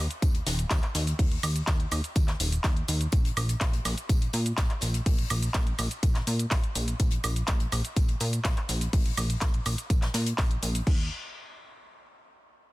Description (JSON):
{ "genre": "progressive house", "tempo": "124 BPM", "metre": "4/4", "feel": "straight", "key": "unclear", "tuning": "A4 = 440 Hz", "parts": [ { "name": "plucky analog bass", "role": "bass", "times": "0.0-11.1 s", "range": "Eb1 to Bb2", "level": "-29 LUFS", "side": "equal", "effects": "sidechain pumping" }, { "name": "house drum kit", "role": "drums", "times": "0.1-11.0 s", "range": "cabasa, crash cymbal, handclaps, hi-hat, woodblock", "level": "-32 LUFS", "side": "equal", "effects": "studio ambience" }, { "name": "electronic kick drum", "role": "drums", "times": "0.2-11.0 s", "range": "none", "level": "-25 LUFS", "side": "equal", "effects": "studio ambience" }, { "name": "jazz brush drum kit", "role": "drums", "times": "0.2-10.9 s", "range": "hi-hat, snare drum, tambourine", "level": "-40 LUFS", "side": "left 2 dB", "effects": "sidechain pumping on hats, high-pass filter on hats, studio ambience, soft clipping on snare, high-pass filter on snare, sidechain pumping on perc, high-pass filter on perc, high-pass filter on room" } ], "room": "studio reverb", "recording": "dense, heavily limited modern master", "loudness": "-25 LUFS", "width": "side -18 dB against mid", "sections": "0.0-10.9 A section; 10.9-12.7 B section", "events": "none", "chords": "none" }